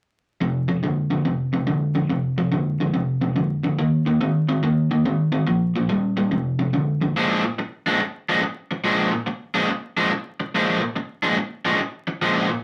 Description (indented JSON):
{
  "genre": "blues",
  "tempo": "142 BPM",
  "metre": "4/4",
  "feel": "swing 66% on 8ths",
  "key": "Bb mixolydian",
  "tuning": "A4 = 439 Hz",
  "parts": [
    { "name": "overdriven semi-hollow guitar", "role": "solo", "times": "0.4-12.5 s", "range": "F2 to D4", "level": "-22 LUFS", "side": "equal", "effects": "none" }
  ],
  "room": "wet studio ambience, RT60 0.5 s",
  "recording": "vinyl crackle",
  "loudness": "-22 LUFS",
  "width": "mono",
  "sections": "0.4-7.2 A section; 7.2-12.6 B section",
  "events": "none",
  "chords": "0.4 F5; 3.8 Eb5; 5.5 Bb5; 6.3 F5; 7.2 Bb7"
}